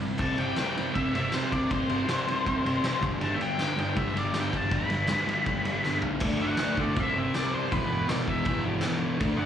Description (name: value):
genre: garage rock duo or trio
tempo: 160 BPM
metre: 4/4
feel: straight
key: unclear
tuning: A4 = 442 Hz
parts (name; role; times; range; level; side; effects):
- thick fuzz guitar; riff; 0.0-9.5 s; E2 to D4; -28 LUFS; equal; distortion
- octave-fuzz lead guitar; melody; 0.2-9.5 s; B4 to B5; -31 LUFS; left 2 dB; distortion, slapback echo
- oversized low-tuned drum kit; drums; 0.2-9.3 s; crash cymbal, kick drum, ride cymbal, snare drum, toms; -30 LUFS; equal; none
room: light reverb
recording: live gig heard through the venue's PA, club reverb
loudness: -25 LUFS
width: side -9 dB against mid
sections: 0.2-6.2 A section; 6.2-9.5 B section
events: drum fill 5.8-6.2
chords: 0.0 C5; 3.0 G; 6.2 D; 7.0 C5; 7.7 E5